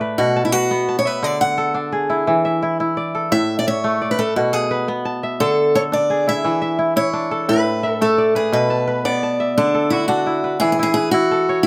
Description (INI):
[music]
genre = west african traditional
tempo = 115 BPM (dotted quarters)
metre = 12/8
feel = straight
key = D lydian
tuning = A4 = 440 Hz
[part]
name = kora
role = arpeggios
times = 0.0-11.7 s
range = A2 to A5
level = -21 LUFS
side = equal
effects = none
[part]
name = picked old ladder-braced acoustic guitar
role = melody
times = 0.2-11.7 s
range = D4 to F#5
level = -21 LUFS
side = equal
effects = none
[sound]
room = light reverb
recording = close, detailed microphones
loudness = -19 LUFS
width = mono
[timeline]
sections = 0.0-9.6 A section; 9.6-11.7 B section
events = steel-string acoustic guitar solo 0.0-9.6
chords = 0.2 Bm; 1.2 D; 2.3 E; 3.3 A; 4.4 Bm; 5.4 D5; 6.4 E; 7.5 A5; 8.5 Bm; 9.6 D; 10.6 E5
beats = 0.19 0.71 | 1.23 1.75 2.27 2.79 | 3.32 3.84 4.36 4.88 | 5.40 5.92 6.44 6.96 | 7.49 8.01 8.53 9.05 | 9.57 10.09 10.61 11.13 | 11.66